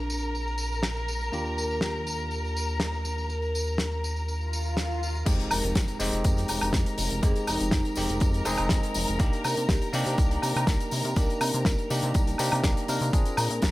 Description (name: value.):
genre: nu-disco, nu disco.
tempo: 122 BPM.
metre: 4/4.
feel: straight.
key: F dorian.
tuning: A4 = 439 Hz.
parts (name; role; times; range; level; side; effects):
vibraphone with medium mallets; melody; 0.0-13.5 s; D4 to Bb4; -36 LUFS; equal; tape echo.
bell-like tine electric piano; accompaniment; 0.0-13.7 s; Ab3 to Bb4; -33 LUFS; equal; sidechain pumping, tape echo.
dark chamber string section; sustained chords; 0.0-13.7 s; Bb4 to Bb5; -35 LUFS; equal; sidechain pumping.
chorused synth bass; bass; 0.0-13.7 s; F1 to C3; -30 LUFS; equal; tube saturation, sidechain pumping.
damped 70s drum kit; drums; 0.1-13.7 s; crash cymbal, hi-hat, snare drum, tambourine, woodblock; -31 LUFS; left 1 dB; small room ambience.
swell and impact; sound effects; 4.4-7.2 s; none; -38 LUFS; equal; none.
electronic kick drum; drums; 5.3-13.7 s; none; -25 LUFS; equal; overdrive, small room ambience.
tambourine; percussion; 5.3-13.7 s; none; -40 LUFS; left 4 dB; none.
room: little or no reverb.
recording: none.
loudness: -24 LUFS.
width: side -18 dB against mid.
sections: 0.0-5.3 A section; 5.3-13.7 B section.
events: swell 4.4-5.3; drop 5.3-13.7; impact 5.3-7.2.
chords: 0.0 Bb7; 1.3 Ebmaj7; 5.3 Fm9; 9.2 Cm7; 13.1 Bb7.